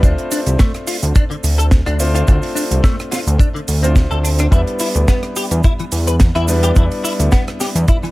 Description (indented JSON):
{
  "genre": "nu-disco, nu disco",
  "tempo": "107 BPM",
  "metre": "4/4",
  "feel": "swing 54% on 16ths",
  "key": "D dorian",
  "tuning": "A4 = 443 Hz",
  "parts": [
    { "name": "clear concert grand piano", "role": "accompaniment", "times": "0.0-8.1 s", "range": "G3 to C5", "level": "-22 LUFS", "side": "left 1 dB", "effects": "vintage 12-bit sampler grit, sidechain pumping, tape echo" },
    { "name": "direct-recorded clean electric guitar", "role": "riff", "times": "0.0-8.1 s", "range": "D3 to B4", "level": "-24 LUFS", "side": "left 2 dB", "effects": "ensemble chorus, tape echo" },
    { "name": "fat analog bass", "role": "bass", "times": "0.0-7.9 s", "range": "C2 to E2", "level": "-15 LUFS", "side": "equal", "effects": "none" },
    { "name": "kick drum", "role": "drums", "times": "0.0-8.0 s", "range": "none", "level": "-13 LUFS", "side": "equal", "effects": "none" },
    { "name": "tight funk drum kit", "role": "drums", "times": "0.0-8.1 s", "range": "cabasa, hi-hat, rim click, snare drum", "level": "-24 LUFS", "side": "right 2 dB", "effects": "none" },
    { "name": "cabasa", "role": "percussion", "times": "0.0-8.1 s", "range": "none", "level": "-31 LUFS", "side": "right 6 dB", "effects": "none" }
  ],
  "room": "studio reverb",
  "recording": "none",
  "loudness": "-13 LUFS",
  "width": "side -19 dB against mid",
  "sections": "0.0-8.1 A section",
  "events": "none",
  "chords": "0.0 Dm7; 4.5 Em7"
}